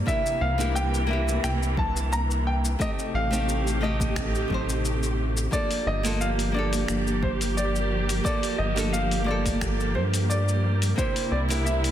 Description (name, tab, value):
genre	sunset chillout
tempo	88 BPM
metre	4/4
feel	swing 53% on 16ths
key	G minor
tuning	A4 = 440 Hz
part	nylon-string guitar	accompaniment	0.0-11.9 s	A3 to C5	-32 LUFS	equal	auto-pan, ping-pong delay
part	dark studio string section	sustained chords	0.0-11.9 s	C3 to G4	-31 LUFS	right 2 dB	none
part	round analog bass	bass	0.0-11.9 s	G1 to G2	-26 LUFS	equal	none
part	warm grand piano	melody	0.1-11.7 s	C5 to Bb5	-30 LUFS	equal	ping-pong delay
part	dusty soul sampler-style drum kit	drums	0.1-11.9 s	cabasa, finger snaps, hi-hat	-34 LUFS	left 2 dB	soft clipping on snare
part	electronic kick drum	drums	0.1-11.1 s	none	-30 LUFS	equal	none
part	congas	percussion	0.6-11.6 s	none	-37 LUFS	left 1 dB	none
room	light reverb, small room ambience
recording	dense, heavily limited modern master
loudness	-23 LUFS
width	side -11 dB against mid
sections	0.0-11.9 A section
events	none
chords	0.1 C7; 2.8 Am7b5; 5.5 Gm7; 11.0 C7